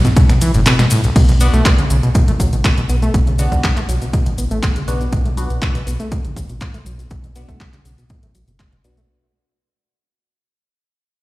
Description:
acid house; 121 BPM; 4/4; straight; A4 = 440 Hz
acid bass, saw; riff; 0.0-9.0 s; B1 to B3; -19 LUFS; equal; overdrive, cassette tape, sidechain pumping, ping-pong delay
round analog bass; bass; 0.0-9.1 s; F#1 to B1; -17 LUFS; equal; tube saturation, sidechain pumping
punchy analog drum machine; drums; 0.0-9.1 s; congas, crash cymbal, finger snaps, handclaps, hi-hat, ride cymbal, snare drum, toms; -21 LUFS; equal; overdrive
maracas; percussion; 0.1-9.1 s; -30 LUFS; left 5 dB
electronic kick drum; drums; 0.2-8.7 s; -15 LUFS; equal; overdrive
band-passed chord stab; stabs; 1.4-9.0 s; B3 to F#4; -28 LUFS; left 2 dB; phaser, ping-pong delay
little or no reverb; played on a big sound system in a bare room, stone room reverb; -13 LUFS; side -19 dB against mid
0.0-1.2 A section; 1.2-9.1 B section
drop 0.0-1.2; fade-out 1.2-9.1; filter sweep on acid bass 1.2-9.1; filter sweep on synth stab 1.2-9.1
0.0 N.C.; 1.2 Bm
0.17 0.66 | 1.16 1.65 2.15 2.65 | 3.14 3.64 4.13 4.63 | 5.12 5.62 6.12 6.61 | 7.11 7.60 8.10 8.60

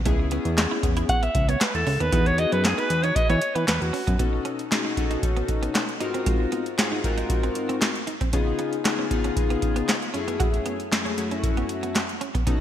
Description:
early-eighties boogie funk; 116 BPM; 4/4; straight; F# dorian; A4 = 439 Hz
chorused polysynth; accompaniment; 0.1-12.6 s; F#2 to A#4; -27 LUFS; left 4 dB
clean electric guitar; riff; 0.1-12.5 s; G#3 to F#4; -34 LUFS; right 6 dB; tube saturation, analog chorus
fat analog bass; bass; 0.1-4.2 s; C#2 to E3; -25 LUFS; equal
booming analog drum machine; drums; 0.1-12.6 s; handclaps, hi-hat, kick drum, snare drum; -24 LUFS; equal; gated reverb
breathy alto saxophone; melody; 1.1-4.2 s; F#4 to F#5; -24 LUFS; equal; digital delay
moderate lush hall reverb, RT60 2.2 s; bright 1980s-style digital production; -21 LUFS; side -10 dB against mid
0.0-4.2 A section; 4.2-12.6 B section
alto saxophone solo 0.0-4.2
0.1 Amaj9/C# (rootless); 2.1 Emaj9; 4.2 B9; 6.0 G#13; 8.3 C#7; 10.1 F#m9
| 0.06 0.57 1.09 1.61 | 2.12 2.64 3.16 3.68 | 4.19 4.71 5.23 5.75 | 6.26 6.78 7.30 7.82 | 8.33 8.85 9.37 9.88 | 10.40 10.92 11.44 11.95 | 12.47

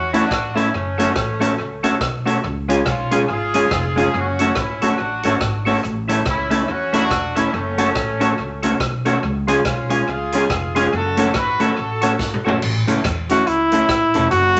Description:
ska; 141 BPM; 4/4; swing 60% on 8ths; A major; A4 = 440 Hz
warm horn section; melody; 0.0-12.5 s; A3 to B4; -25 LUFS; equal
upright bass; bass; 0.0-14.6 s; E1 to E2; -28 LUFS; equal
vintage hollow-body jazz guitar; accompaniment; 0.1-14.6 s; G#3 to A4; -23 LUFS; equal
percussive tonewheel organ; stabs; 0.1-12.6 s; E4 to C#5; -27 LUFS; equal; overdrive, slow rotary speaker
swinging big-band drum kit; drums; 0.1-14.6 s; crash cymbal, hi-hat, kick drum, rim click, snare drum, toms; -28 LUFS; equal; tape echo
clear trumpet; melody; 13.3-14.6 s; E4 to F#4; -17 LUFS; equal
wet studio reverb, RT60 0.7 s; nothing above 8.0 kHz; -19 LUFS; mono
0.0-12.6 A section; 12.6-14.6 B section
drum fill 12.2-12.6; trumpet solo 12.6-14.6
0.0 A; 0.7 F#m; 2.4 C#; 4.1 F#m; 5.8 A; 7.5 F#m; 9.2 C#; 10.9 F#m; 12.6 A
0.32 | 0.74 1.17 1.59 2.02 | 2.44 2.87 3.29 3.71 | 4.14 4.56 4.99 5.41 | 5.84 6.26 6.69 7.11 | 7.54 7.96 8.38 8.81 | 9.23 9.66 10.08 10.50 | 10.93 11.35 11.78 12.20 | 12.62 13.04 13.47 13.89 | 14.31

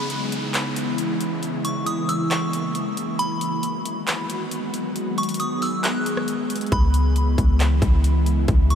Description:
hip hop, atmospheric cloud-rap; 136 BPM; 4/4; half-time; C# dorian; A4 = 441 Hz
delicate synth tine bell; melody; 0.0-8.8 s; B5 to F#6; -29 LUFS; equal; chorus, diffuse ambient delay
ethereal airy pad; sustained chords; 0.0-8.8 s; C#3 to G#4; -25 LUFS; equal; ensemble chorus, built-in reverb, sidechain pumping
downlifter; sound effects; 0.0-3.2 s; -35 LUFS; equal
trap drum kit; drums; 0.1-8.8 s; handclaps, hi-hat, kick drum, rim click; -25 LUFS; equal
soft 808-style bass; bass; 6.7-8.8 s; C#2; -18 LUFS; equal
moderate huge ambient reverb, RT60 5.9 s; dreamy mix soaked in reverb; -20 LUFS; side -8 dB against mid
0.0-8.8 A section
break 0.0-6.7; kick muted 5.0-6.7
0.0 C#m7; 3.2 B6; 6.7 C#m7
0.10 0.54 0.98 | 1.43 1.87 2.31 2.75 | 3.19 3.63 4.07 4.51 | 4.96 5.40 5.84 6.28 | 6.72 7.16 7.60 8.04 | 8.48

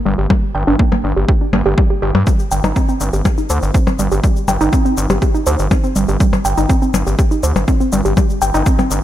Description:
melodic techno; 122 BPM; 4/4; straight; A4 = 440 Hz
woody wave-folded pluck; arpeggios; 0.0-8.9 s; G3 to G5; -18 LUFS; right 1 dB; chorus, sidechain pumping, ping-pong delay
gritty driven synth bass; bass; 0.1-9.0 s; G1 to G2; -17 LUFS; equal; tube saturation, sidechain pumping
electronic kick drum; drums; 0.3-8.8 s; -15 LUFS; equal
percussion blips and shaker; drums; 0.3-9.0 s; -22 LUFS; left 4 dB
light reverb; bright 1980s-style digital production; -13 LUFS; side -12 dB against mid
0.0-9.0 A section
0.0 Gm; 2.3 Cm/G
| 0.30 0.79 1.29 1.78 | 2.27 2.76 3.25 3.75 | 4.24 4.73 5.22 5.71 | 6.20 6.70 7.19 7.68 | 8.17 8.66

